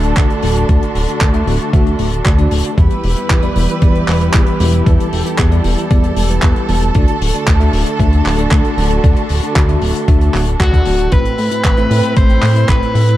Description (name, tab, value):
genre	italo disco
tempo	115 BPM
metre	4/4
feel	straight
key	unclear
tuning	A4 = 440 Hz
part	rich studio string section	sustained chords	0.0-13.2 s	D3 to B5	-20 LUFS	right 2 dB	none
part	bell-like tine electric piano	stabs	0.0-13.2 s	A2 to E5	-20 LUFS	left 1 dB	fast stereo tremolo, tape echo
part	chorused synth bass	bass	0.0-13.2 s	D1 to A2	-15 LUFS	equal	none
part	damped 70s drum kit	drums	0.0-13.2 s	handclaps, hi-hat	-22 LUFS	equal	none
part	electronic kick drum	drums	0.2-12.8 s	none	-13 LUFS	equal	none
part	fuzz lead guitar	melody	10.6-13.2 s	F#4 to C5	-17 LUFS	equal	distortion, digital delay
room	light reverb, small room ambience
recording	dark, warm production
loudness	-11 LUFS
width	side -14 dB against mid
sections	0.0-11.1 A section; 11.1-13.2 B section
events	band accent 10.6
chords	0.0 D; 2.8 Em; 7.0 D; 11.1 Amadd9